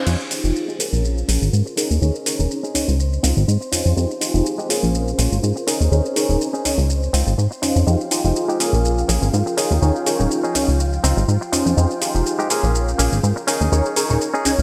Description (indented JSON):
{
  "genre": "filtered disco house",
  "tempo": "123 BPM",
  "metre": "4/4",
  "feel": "swing 54% on 16ths",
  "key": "unclear",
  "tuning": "A4 = 440 Hz",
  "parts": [
    { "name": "funky polysynth comp", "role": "accompaniment", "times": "0.0-14.6 s", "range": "Db4 to F5", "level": "-25 LUFS", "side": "equal", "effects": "chorus, phaser, low-pass filter" },
    { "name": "string machine, full ensemble", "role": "sustained chords", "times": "0.1-14.6 s", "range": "F4 to C6", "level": "-33 LUFS", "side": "equal", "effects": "ensemble chorus, low-pass filter" },
    { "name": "plucky analog bass", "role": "bass", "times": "0.1-14.6 s", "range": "Eb1 to Ab2", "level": "-20 LUFS", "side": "equal", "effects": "tube saturation, low-pass filter" },
    { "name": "house drum kit", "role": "drums", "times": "0.1-14.6 s", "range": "crash cymbal, hi-hat, shaker", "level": "-27 LUFS", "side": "equal", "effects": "studio reverb" },
    { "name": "direct-recorded clean electric guitar", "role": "riff", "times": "0.7-14.5 s", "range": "Ab3 to F5", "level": "-29 LUFS", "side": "equal", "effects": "low-pass filter" }
  ],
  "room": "moderate lush hall reverb, RT60 1.8 s, digital ambience",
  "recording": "bright 1980s-style digital production",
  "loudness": "-19 LUFS",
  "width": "mono",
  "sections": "0.1-14.6 A section",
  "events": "filter sweep 0.1-14.6; clean electric guitar fill 3.0-4.0",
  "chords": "0.1 Fm9; 0.8 Bbm7; 1.8 Eb7sus4; 3.0 Dbmaj9; 4.0 Fm9; 4.7 Bbm7; 5.7 Eb7sus4; 6.9 Dbmaj9; 7.9 Fm9; 8.6 Bbm7; 9.6 Eb7sus4; 10.8 Dbmaj9; 11.8 Fm9; 12.5 Bbm7; 13.5 Eb7sus4"
}